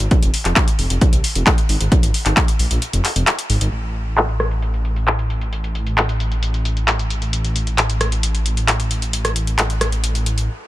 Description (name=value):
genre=driving peak-time techno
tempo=133 BPM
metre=4/4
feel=straight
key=unclear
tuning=A4 = 437 Hz
part: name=detuned saw bass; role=bass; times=0.0-10.5 s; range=F1 to C2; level=-20 LUFS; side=equal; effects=sidechain pumping
part: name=techno drum kit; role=drums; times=0.0-10.5 s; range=handclaps, hi-hat, rim click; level=-20 LUFS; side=left 1 dB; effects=low-pass filter on hats, low-pass filter on snare, low-pass filter on room
part: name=electronic kick drum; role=drums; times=0.1-2.5 s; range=none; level=-15 LUFS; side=equal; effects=none
room=little or no reverb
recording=none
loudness=-16 LUFS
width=side -15 dB against mid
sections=0.0-3.7 A section; 3.7-10.7 B section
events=break 2.8-3.7; filter sweep on drum 3.7-10.7; stop 10.5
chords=none